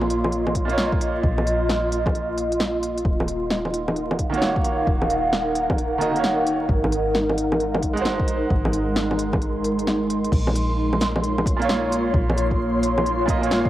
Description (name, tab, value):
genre	future garage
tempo	132 BPM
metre	4/4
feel	swing 64% on 16ths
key	Bb minor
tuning	A4 = 440 Hz
part	bright upright piano	accompaniment	0.0-13.7 s	Bb2 to Eb5	-27 LUFS	right 4 dB	sidechain pumping, cassette tape, analog delay
part	ethereal airy pad	sustained chords	0.0-13.7 s	Ab3 to C6	-23 LUFS	equal	ensemble chorus, built-in reverb, sidechain pumping, cassette tape
part	soft 808-style bass	bass	0.0-13.7 s	Eb1 to Bb1	-28 LUFS	equal	sidechain pumping
part	deep house drum kit	drums	0.0-13.6 s	bongos, cabasa, crash cymbal, hi-hat, snare drum	-26 LUFS	equal	cassette tape
part	electronic kick drum	drums	0.5-13.7 s	none	-24 LUFS	equal	cassette tape
part	backwards swelling texture	texture	11.0-13.7 s	C6	-35 LUFS	left 1 dB	built-in reverb, cassette tape
room	moderate spring reverb, RT60 2.4 s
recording	home recording on cassette, vinyl crackle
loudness	-19 LUFS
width	side -14 dB against mid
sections	0.0-10.3 A section; 10.3-13.7 B section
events	kick drops out 9.9-10.3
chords	0.0 Bbm; 3.1 Ebm7; 6.7 Ab7; 10.3 Bbm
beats	0.33 0.78 | 1.24 1.69 2.15 2.60 | 3.06 3.51 3.96 4.42 | 4.87 5.33 5.78 6.24 | 6.69 7.15 7.60 8.05 | 8.51 8.96 9.42 9.87 | 10.33 10.78 11.24 11.69 | 12.15 12.60 13.05 13.51